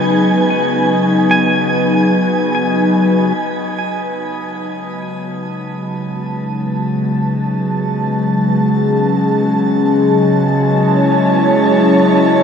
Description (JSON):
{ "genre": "ambient", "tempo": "free time", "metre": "none", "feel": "none", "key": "unclear", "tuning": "A4 = 441 Hz", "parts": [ { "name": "airy breathy pad", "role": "sustained chords", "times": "0.0-12.4 s", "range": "C#3 to A5", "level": "-15 LUFS", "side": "left 1 dB", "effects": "chorus" }, { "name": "clean electric guitar", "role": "arpeggios", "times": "0.0-3.7 s", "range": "G#5 to C#6", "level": "-23 LUFS", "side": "equal", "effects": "tremolo, ping-pong delay" }, { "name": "analog drone", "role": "drone", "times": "0.6-12.4 s", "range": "C#3 to G#3", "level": "-17 LUFS", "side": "left 1 dB", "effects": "chorus, phaser" }, { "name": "wind-like tuned noise texture", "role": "texture", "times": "0.0-3.4, 10.5-12.4 s", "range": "G#5 to A5", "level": "-22 LUFS", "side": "right 2 dB", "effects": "built-in reverb" } ], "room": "wet shimmer reverb, RT60 7.2 s", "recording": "none", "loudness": "-12 LUFS", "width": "side -7 dB against mid", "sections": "0.0-3.4 A section; 3.4-12.4 B section", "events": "fade-in on analog synth pad 3.4-12.4", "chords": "0.0 G#m7/C#; 3.4 B7; 9.9 F#m7", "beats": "free time" }